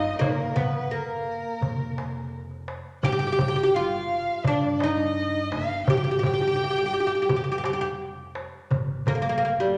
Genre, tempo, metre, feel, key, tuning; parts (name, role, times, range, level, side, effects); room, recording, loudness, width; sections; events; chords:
Arabic maqam ensemble; 85 BPM; 4/4; straight; G maqam saba; A4 = 438 Hz
oud; melody; 0.0-9.8 s; G3 to G4; -28 LUFS; equal
rich violin; second line; 0.0-8.0 s; Bb4 to G5; -34 LUFS; equal
upright bass; bass; 0.0-9.8 s; F1 to G2; -39 LUFS; equal
darbuka; percussion; 0.2-9.2 s; -30 LUFS; equal
wet large studio reverb, RT60 1.5 s; -25 LUFS; mono
0.0-8.7 A section; 8.7-9.8 B section